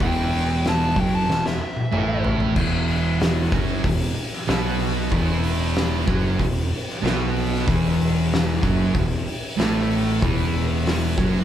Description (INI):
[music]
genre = stoner and doom metal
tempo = 94 BPM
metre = 4/4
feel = straight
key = unclear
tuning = A4 = 439 Hz
[part]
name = fuzz lead guitar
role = melody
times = 0.0-2.2 s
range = E5 to A5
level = -26 LUFS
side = left 1 dB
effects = distortion
[part]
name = thick fuzz guitar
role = riff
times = 0.0-11.4 s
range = E2 to B3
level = -26 LUFS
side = left 5 dB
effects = distortion
[part]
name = thick fuzz guitar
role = riff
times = 0.0-11.4 s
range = E2 to B3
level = -24 LUFS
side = right 6 dB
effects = distortion
[part]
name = fuzz picked electric bass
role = bass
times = 0.0-11.4 s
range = E1 to B1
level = -26 LUFS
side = equal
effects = overdrive, tube saturation
[part]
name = oversized low-tuned drum kit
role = drums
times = 0.0-11.3 s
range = crash cymbal, hi-hat, kick drum, snare drum, toms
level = -24 LUFS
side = left 1 dB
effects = none
[sound]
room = light reverb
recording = band playing live in one room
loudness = -19 LUFS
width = side -10 dB against mid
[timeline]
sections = 0.0-2.6 A section; 2.6-11.4 B section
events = lead electric guitar solo 0.0-2.6; drum fill 1.3-2.6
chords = 0.0 Em; 2.6 E5